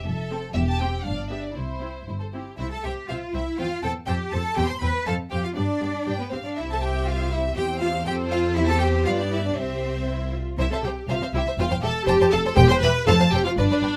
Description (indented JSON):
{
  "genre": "quick classical-period movement for string orchestra",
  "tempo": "120 BPM",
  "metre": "2/4",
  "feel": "straight",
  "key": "C major",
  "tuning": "A4 = 440 Hz",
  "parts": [
    { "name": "rich studio violin section", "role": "melody", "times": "0.0-14.0 s", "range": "C5 to C6", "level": "-34 LUFS", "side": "equal", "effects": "none" },
    { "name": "rich studio violin section", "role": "second line", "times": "0.0-13.9 s", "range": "D4 to C6", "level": "-32 LUFS", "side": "equal", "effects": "none" },
    { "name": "rich studio cello section", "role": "bass", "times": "0.1-13.9 s", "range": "E2 to C5", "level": "-30 LUFS", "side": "equal", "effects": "none" },
    { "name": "rich studio double bass section", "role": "bass", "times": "0.1-13.9 s", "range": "E1 to G2", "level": "-28 LUFS", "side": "equal", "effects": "none" },
    { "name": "rich studio viola section", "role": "accompaniment", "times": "0.3-14.0 s", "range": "B3 to C5", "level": "-29 LUFS", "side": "equal", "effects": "none" }
  ],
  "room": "little or no reverb",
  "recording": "close, detailed microphones",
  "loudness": "-24 LUFS",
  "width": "mono",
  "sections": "0.0-2.6 A section; 2.6-10.6 B section; 10.6-14.0 B section",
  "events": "none",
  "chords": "0.1 F; 0.6 C/E; 1.1 G; 1.6 C; 3.6 C/E; 4.1 F; 4.6 C; 5.1 F5; 5.6 G; 6.6 C; 7.6 C/E; 8.1 F; 8.6 C/E; 9.1 G7; 9.6 C; 11.6 C/E (rootless); 12.1 F; 12.6 C/E; 13.1 F"
}